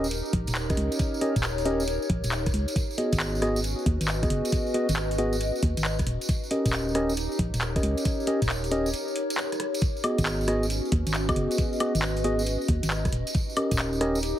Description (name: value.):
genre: UK garage, two-step garage.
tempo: 136 BPM.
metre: 4/4.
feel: swing 67% on 16ths.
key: G# minor.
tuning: A4 = 440 Hz.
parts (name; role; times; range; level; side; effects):
mellow tine electric piano; stabs; 0.0-14.2 s; B3 to D#5; -28 LUFS; equal; ping-pong delay.
organ-like FM bass; bass; 0.0-14.3 s; D#1 to D#2; -28 LUFS; equal; none.
tambourine; percussion; 0.0-14.3 s; none; -38 LUFS; right 2 dB; none.
warbly tape-like pad; texture; 0.0-14.4 s; C#4 to D#5; -32 LUFS; left 1 dB; chorus, built-in reverb, sidechain pumping.
garage drum kit; drums; 0.1-14.3 s; handclaps, hi-hat, rim click, woodblock; -32 LUFS; left 1 dB; none.
electronic kick drum; drums; 0.3-13.8 s; none; -27 LUFS; equal; none.
room: light reverb, digital ambience.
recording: heavily compressed radio sound.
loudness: -24 LUFS.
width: side -12 dB against mid.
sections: 0.0-14.4 A section.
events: break 8.9-9.8.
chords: 0.0 D#7; 2.8 G#m7; 6.1 D#7; 9.8 G#m7; 13.1 D#7.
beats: 0.11 0.55 | 0.99 1.44 1.88 2.32 | 2.76 3.20 3.64 4.08 | 4.52 4.96 5.41 5.85 | 6.29 6.73 7.17 7.61 | 8.05 8.49 8.94 9.38 | 9.82 10.26 10.70 11.14 | 11.58 12.02 12.46 12.91 | 13.35 13.79 14.23.